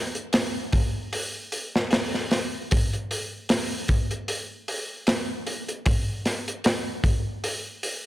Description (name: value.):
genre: trip hop.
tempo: 76 BPM.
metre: 4/4.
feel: swing 56% on 16ths.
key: none.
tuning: none.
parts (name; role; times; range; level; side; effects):
crunchy breakbeat drum kit; drums; 0.1-8.0 s; hi-hat, kick drum, snare drum; -24 LUFS; equal; none.
room: light reverb.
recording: none.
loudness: -24 LUFS.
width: side -15 dB against mid.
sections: 0.0-8.1 A section.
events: none.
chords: none.